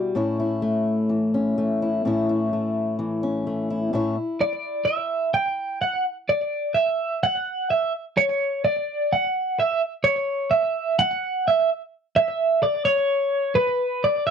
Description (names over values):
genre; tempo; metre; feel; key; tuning
folk; 127 BPM; 4/4; straight; A mixolydian; A4 = 441 Hz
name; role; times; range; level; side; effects
fingerpicked swing-style acoustic guitar; accompaniment; 0.0-6.1 s; A2 to C#5; -22 LUFS; left 2 dB; none
twelve-string electric guitar; melody; 4.4-14.3 s; B4 to G5; -20 LUFS; right 2 dB; harmonic tremolo, slapback echo
room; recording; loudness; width
little or no reverb; dry, close 1970s-style studio recording; -21 LUFS; side -7 dB against mid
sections
0.0-4.2 A section; 4.2-11.7 B section; 11.7-14.3 C section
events
build-up 4.2-11.7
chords
0.2 A; 4.2 N.C.